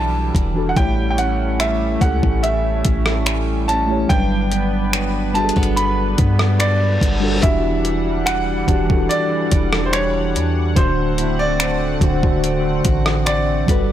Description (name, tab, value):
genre	contemporary R&B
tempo	72 BPM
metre	4/4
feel	straight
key	unclear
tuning	A4 = 440 Hz
part	bright concert grand piano	melody	0.0-13.9 s	C5 to B5	-23 LUFS	right 1 dB	ping-pong delay
part	mellow tine electric piano	accompaniment	0.0-13.9 s	D3 to D5	-22 LUFS	equal	medium stereo tremolo
part	chorused pulse-width pad	sustained chords	0.0-13.9 s	D3 to F#5	-28 LUFS	equal	none
part	picked steel-string acoustic guitar	arpeggios	0.0-13.9 s	G2 to F#4	-28 LUFS	right 3 dB	ping-pong delay
part	warm 808-style bass	bass	0.0-13.9 s	D1 to G2	-21 LUFS	equal	none
part	clean 12-bit digital drum machine	drums	0.3-13.9 s	finger snaps, hi-hat, kick drum, rim click	-20 LUFS	equal	overdrive, soft clipping on snare
part	reverse cymbal	sound effects	6.5-7.4 s	none	-29 LUFS	left 2 dB	none
room	digital ambience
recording	blown-out, overdriven recording, overdrive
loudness	-15 LUFS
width	side -11 dB against mid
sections	0.0-7.4 A section; 7.4-13.9 B section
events	reverse cymbal 6.5-7.4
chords	0.0 Em9; 0.8 A7; 4.1 Gmaj7; 7.4 Em9; 10.8 D7